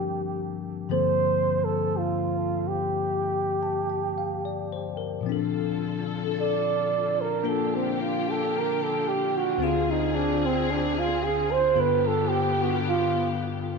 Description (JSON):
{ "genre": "jazz ballad", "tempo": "56 BPM", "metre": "4/4", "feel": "swing 68% on 8ths", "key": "G minor", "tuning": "A4 = 439 Hz", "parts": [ { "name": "breathy flugelhorn", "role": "melody", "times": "0.0-13.3 s", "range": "C4 to D5", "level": "-25 LUFS", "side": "right 6 dB", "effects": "tape echo" }, { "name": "bell-like tine electric piano", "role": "accompaniment", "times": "0.0-13.8 s", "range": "D2 to A5", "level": "-28 LUFS", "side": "left 9 dB", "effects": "slow stereo tremolo" }, { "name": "warm studio string section", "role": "sustained chords", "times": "5.2-13.8 s", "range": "D3 to A4", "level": "-31 LUFS", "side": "left 5 dB", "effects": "none" } ], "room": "wet echo chamber reverb, RT60 1.4 s, small room reverb", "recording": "1960s-style stereo with parts hard left and right", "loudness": "-23 LUFS", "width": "side -4 dB against mid", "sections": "0.0-5.3 A section; 5.3-13.8 B section", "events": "flugelhorn solo 5.3-13.8", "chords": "0.0 Gm11; 5.3 Bbmaj7; 9.6 Dm7b5; 11.7 G7", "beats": "| 0.90 1.98 3.07 4.16 | 5.26 6.34 7.43 8.51 | 9.59 10.66 11.73 12.81" }